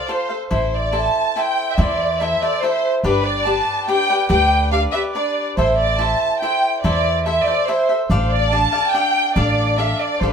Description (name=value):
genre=mexican folk, mariachi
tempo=142 BPM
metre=3/4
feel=straight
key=unclear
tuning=A4 = 439 Hz
part: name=warm symphonic violin section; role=melody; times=0.0-10.3 s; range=B4 to A5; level=-19 LUFS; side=equal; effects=none
part: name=cavaquinho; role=accompaniment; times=0.0-10.3 s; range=D4 to F5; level=-21 LUFS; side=equal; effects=none
part: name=upright bass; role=bass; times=0.5-10.3 s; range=G1 to E2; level=-20 LUFS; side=equal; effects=none
room=wet small room reverb, RT60 0.5 s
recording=minimal, uncompressed stereo recording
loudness=-16 LUFS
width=side -7 dB against mid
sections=0.0-10.3 A section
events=none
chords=0.0 F; 0.5 Am; 3.0 G; 5.6 Am; 8.1 Dm/A